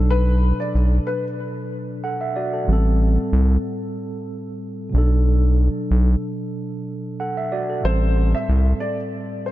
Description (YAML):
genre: hip hop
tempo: 93 BPM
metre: 4/4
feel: swing 54% on 16ths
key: unclear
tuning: A4 = 441 Hz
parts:
  - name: mellow tine electric piano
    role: accompaniment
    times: 0.0-9.5 s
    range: A2 to F#5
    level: -25 LUFS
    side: right 1 dB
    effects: medium stereo tremolo, cassette tape, high-pass filter, low-pass filter
  - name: round analog bass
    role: bass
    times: 0.0-8.7 s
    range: A1 to C2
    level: -16 LUFS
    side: equal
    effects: none
  - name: dark upright piano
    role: melody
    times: 0.1-1.2, 7.8-9.5 s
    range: B4 to E5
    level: -28 LUFS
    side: left 3 dB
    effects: wide subtle chorus, high-pass filter, low-pass filter, analog delay
room: light reverb, studio ambience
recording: none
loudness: -18 LUFS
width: side -15 dB against mid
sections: 0.0-9.5 A section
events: none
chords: 0.0 Bm7; 2.7 Am7; 4.9 Bm7; 7.8 Am7